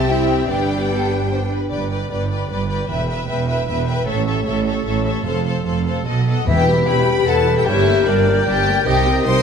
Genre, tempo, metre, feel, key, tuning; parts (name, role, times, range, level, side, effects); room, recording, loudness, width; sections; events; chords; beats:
cinematic, heroic adventure film score; 151 BPM; 3/4; straight; G mixolydian; A4 = 439 Hz
rich symphonic violin section; melody; 0.0-9.4 s; D5 to C6; -26 LUFS; left 5 dB
warm symphonic violin section; second line; 0.0-9.4 s; D4 to E5; -26 LUFS; left 3 dB
rich symphonic viola section; accompaniment; 0.0-9.4 s; E3 to B4; -25 LUFS; right 1 dB
mellow French horn section; sustained chords; 0.0-1.5, 6.5-9.4 s; B3 to B4; -20 LUFS; left 6 dB
clear symphonic double bass section; bass; 0.0-9.4 s; E1 to C2; -22 LUFS; right 4 dB
rich symphonic cello section; bass; 0.0-9.4 s; E2 to E4; -24 LUFS; right 3 dB
timpani; percussion; 1.7-2.3, 6.5-7.0 s; E2 to G2; -24 LUFS; left 1 dB
bright small flute group; second line; 6.5-9.4 s; Bb4 to G5; -25 LUFS; left 2 dB
mellow clarinet; second line; 6.5-9.4 s; Bb4 to C5; -26 LUFS; left 4 dB
warm oboe; second line; 6.5-9.4 s; Eb5 to B5; -26 LUFS; equal
moderate scoring stage reverb, RT60 1.8 s; -16 LUFS; side -6 dB against mid
0.0-1.7 A section; 1.7-6.5 B section; 6.5-9.4 C section
0.5 G; 2.9 Em; 4.1 A; 5.3 F; 6.1 B7; 6.5 Em; 7.7 Gm; 8.9 Cm
0.09 | 0.49 0.90 1.30 | 1.71 2.11 2.50 | 2.90 3.29 3.68 | 4.07 4.47 4.86 | 5.26 5.66 6.07 | 6.47 6.88 7.28 | 7.67 8.07 8.47 | 8.87 9.26